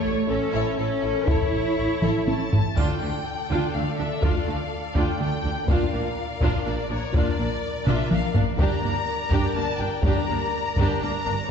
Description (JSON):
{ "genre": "cinematic, epic orchestral film score", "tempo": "124 BPM", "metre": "3/4", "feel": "straight", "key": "D harmonic minor", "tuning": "A4 = 440 Hz", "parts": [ { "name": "rich symphonic violin section", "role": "melody", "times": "0.0-11.5 s", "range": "A4 to Bb5", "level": "-31 LUFS", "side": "left 4 dB", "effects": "none" }, { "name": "warm symphonic violin section", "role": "second line", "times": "0.0-11.5 s", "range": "E4 to D5", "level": "-32 LUFS", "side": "left 3 dB", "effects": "none" }, { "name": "clear symphonic viola section", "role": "accompaniment", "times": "0.0-11.3 s", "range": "A3 to C#5", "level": "-30 LUFS", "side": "right 1 dB", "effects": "none" }, { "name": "mellow French horn section", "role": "sustained chords", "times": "0.0-11.5 s", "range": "D4 to C#5", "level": "-32 LUFS", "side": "left 6 dB", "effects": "none" }, { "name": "clear symphonic cello section", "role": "bass", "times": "0.0-11.3 s", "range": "G2 to E4", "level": "-30 LUFS", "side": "right 2 dB", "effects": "none" }, { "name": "rich symphonic double bass section", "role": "bass", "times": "0.1-11.3 s", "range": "G1 to D2", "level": "-30 LUFS", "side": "right 3 dB", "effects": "none" }, { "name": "solo taiko drums", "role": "drums", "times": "1.3-11.2 s", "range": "none", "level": "-25 LUFS", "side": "equal", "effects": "none" }, { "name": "triangle", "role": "percussion", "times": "2.8-3.7 s", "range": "none", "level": "-50 LUFS", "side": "left 1 dB", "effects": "none" } ], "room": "wet scoring stage reverb, RT60 2.0 s", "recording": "heard from further back in the room, nothing above 7.9 kHz", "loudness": "-21 LUFS", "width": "side -7 dB against mid", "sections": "0.0-2.8 A section; 2.8-11.5 B section", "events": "drum fill 2.0-2.8, 7.9-8.6", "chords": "0.0 A; 2.8 Dm; 5.7 Bb; 8.6 Gm" }